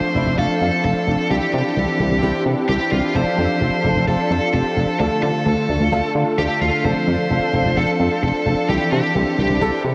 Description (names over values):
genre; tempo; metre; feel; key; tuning
pop; 130 BPM; 4/4; straight; F major; A4 = 440 Hz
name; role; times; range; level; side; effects
bluesy overdriven lead guitar; melody; 0.0-9.8 s; F4 to C5; -25 LUFS; equal; distortion, delay
clear baby grand piano; accompaniment; 0.0-9.9 s; A3 to A4; -25 LUFS; equal; ensemble chorus
sweeping resonant pad; sustained chords; 0.0-9.9 s; D3 to A4; -26 LUFS; equal; chorus
solid FM bass; bass; 0.2-9.9 s; F1 to D3; -22 LUFS; equal; none
room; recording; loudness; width
wet huge ambient reverb, RT60 9.1 s; dreamy mix soaked in reverb; -19 LUFS; mono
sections
0.0-9.9 A section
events
none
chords
0.0 F6; 1.3 Cadd9; 3.2 F6; 5.0 Dm; 6.8 F6; 8.7 Cadd9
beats
0.38 0.84 | 1.31 1.77 2.23 2.69 | 3.15 3.61 4.08 4.54 | 5.00 5.46 5.92 6.38 | 6.84 7.31 7.77 8.23 | 8.69 9.15 9.61